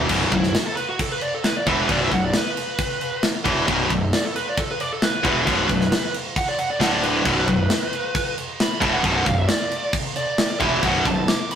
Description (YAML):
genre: heavy metal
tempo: 134 BPM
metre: 4/4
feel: straight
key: B minor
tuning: A4 = 440 Hz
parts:
  - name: heavy high-gain guitar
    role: riff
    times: 0.0-11.2 s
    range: B1 to E3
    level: -20 LUFS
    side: equal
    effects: distortion
  - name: fuzz picked electric bass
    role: bass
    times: 0.0-11.3 s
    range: B0 to E1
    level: -27 LUFS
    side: equal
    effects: overdrive
  - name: tight metal drum kit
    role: drums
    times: 0.1-11.6 s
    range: crash cymbal, kick drum, snare drum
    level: -23 LUFS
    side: equal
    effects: none
  - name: bluesy overdriven lead guitar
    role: melody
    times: 0.3-11.6 s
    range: E4 to D6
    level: -25 LUFS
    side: right 1 dB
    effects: distortion
room: moderate stone room reverb, RT60 1.1 s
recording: rough rehearsal-room recording, tube saturation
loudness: -19 LUFS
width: side -8 dB against mid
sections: 0.1-11.6 A section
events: lead electric guitar solo 0.1-11.6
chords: 0.1 B5; 6.8 D5; 7.2 Bm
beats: | 0.10 0.55 0.99 1.44 | 1.89 2.34 2.79 3.23 | 3.68 4.13 4.57 5.02 | 5.46 5.91 6.36 6.80 | 7.25 7.70 8.14 8.59 | 9.04 9.48 9.93 10.38 | 10.83 11.28